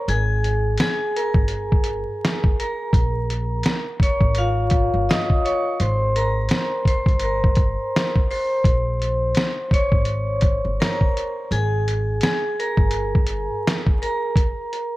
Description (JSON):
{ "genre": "lo-fi hip hop", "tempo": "84 BPM", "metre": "4/4", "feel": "swing 59% on 16ths", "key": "Ab major", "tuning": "A4 = 445 Hz", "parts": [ { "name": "vibraphone with medium hard mallets", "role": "accompaniment", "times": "0.0-15.0 s", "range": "F4 to Eb6", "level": "-23 LUFS", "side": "equal", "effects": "cassette tape" }, { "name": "upright bass", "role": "bass", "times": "0.1-13.5 s", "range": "G1 to Bb1", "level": "-24 LUFS", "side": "equal", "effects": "none" }, { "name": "lo-fi sampler-style drum kit", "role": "drums", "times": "0.1-14.9 s", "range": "hi-hat, kick drum, snare drum", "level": "-19 LUFS", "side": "equal", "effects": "none" } ], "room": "light reverb, studio reverb", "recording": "vinyl crackle", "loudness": "-18 LUFS", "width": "side -18 dB against mid", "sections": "0.0-15.0 A section", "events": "vibraphone solo 0.0-15.0", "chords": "0.1 Absus2; 2.9 Bbm7; 5.8 Abmaj9; 8.6 Bbm7; 11.5 Absus2; 14.4 N.C.", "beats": "| 0.07 0.78 1.50 2.21 | 2.93 3.64 4.35 5.07 | 5.78 6.50 7.21 7.93 | 8.64 9.35 10.07 10.78 | 11.50 12.21 12.93 13.64 | 14.35" }